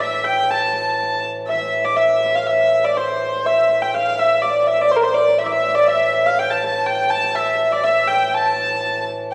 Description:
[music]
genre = medieval dance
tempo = 123 BPM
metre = 2/4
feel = straight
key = A minor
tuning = A4 = 440 Hz
[part]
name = clear hurdy-gurdy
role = melody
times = 0.0-9.1 s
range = Bb4 to A5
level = -19 LUFS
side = equal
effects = none
[part]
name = melodica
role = second line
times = 0.0-1.2, 5.4-9.0 s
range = D5 to A5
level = -26 LUFS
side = equal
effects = none
[part]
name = pedal harmonium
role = drone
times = 0.0-9.3 s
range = A2 to E3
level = -28 LUFS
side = equal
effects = none
[sound]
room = wet recital hall reverb, RT60 1.7 s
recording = recorded in a church or concert hall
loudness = -18 LUFS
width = mono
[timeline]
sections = 0.0-1.5 A section; 1.5-9.3 A section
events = none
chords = none

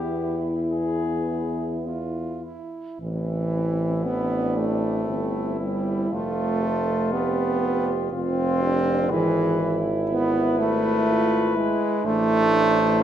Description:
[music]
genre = classical, hymn-like piece for brass band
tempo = 60 BPM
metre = 3/4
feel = uneven beats, rubato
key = A minor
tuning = A4 = 442 Hz
[part]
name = warm flugelhorn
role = melody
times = 0.0-13.0 s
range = E4 to C5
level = -30 LUFS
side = left 8 dB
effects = none
[part]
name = mellow French horn section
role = second line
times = 0.0-13.0 s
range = C4 to A4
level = -28 LUFS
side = right 4 dB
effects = none
[part]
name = clear trombone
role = accompaniment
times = 0.0-13.0 s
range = E3 to F4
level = -25 LUFS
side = right 3 dB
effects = none
[part]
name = warm euphonium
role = accompaniment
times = 0.0-13.0 s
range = C4 to E4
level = -31 LUFS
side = left 4 dB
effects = none
[part]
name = clear tuba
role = bass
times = 0.0-13.0 s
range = F1 to E2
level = -28 LUFS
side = left 1 dB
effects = none
[sound]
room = moderate recital hall reverb, RT60 1.4 s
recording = none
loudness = -21 LUFS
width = side -10 dB against mid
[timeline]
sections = 0.0-3.0 A section; 3.0-13.0 A section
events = none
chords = 0.0 E; 3.0 Am; 6.1 F; 9.1 E/G#; 12.1 Am

